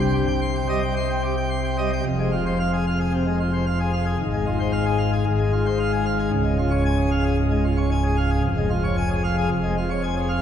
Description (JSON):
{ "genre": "classical, organ toccata", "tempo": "113 BPM", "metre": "4/4", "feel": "straight", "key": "F minor", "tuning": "A4 = 441 Hz", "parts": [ { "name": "pipe organ, plenum", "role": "solo", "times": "0.0-10.4 s", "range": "Db1 to C6", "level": "-20 LUFS", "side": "equal", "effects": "none" } ], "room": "wet church reverb, RT60 2.9 s", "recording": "heard from further back in the room", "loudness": "-20 LUFS", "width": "side -9 dB against mid", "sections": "0.0-2.0 A section; 2.0-10.4 B section", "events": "none", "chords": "0.0 Cm; 2.0 Fm; 4.2 Fm/Ab; 6.3 Db; 8.4 Db/F" }